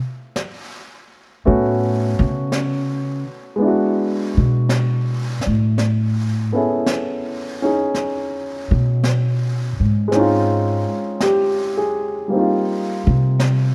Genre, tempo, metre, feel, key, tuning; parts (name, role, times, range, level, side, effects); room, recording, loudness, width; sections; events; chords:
jazz ballad; 55 BPM; 4/4; swing 69% on 8ths; A4 = 440 Hz
warm grand piano; accompaniment; 0.0-13.7 s; G3 to A4; -22 LUFS; equal
brushed snare drum and snare drum; drums; 0.4-13.7 s; -31 LUFS; equal
upright bass; bass; 1.5-13.7 s; G#2 to C#3; -20 LUFS; equal
little or no reverb; dark, warm production; -19 LUFS; mono
0.0-13.7 A section
upright bass solo 0.0-13.7
0.0 Fmaj7; 1.4 Bsus2; 3.6 E7; 5.8 Amaj9; 10.1 Dbmaj9#11/Ab; 12.3 Eb69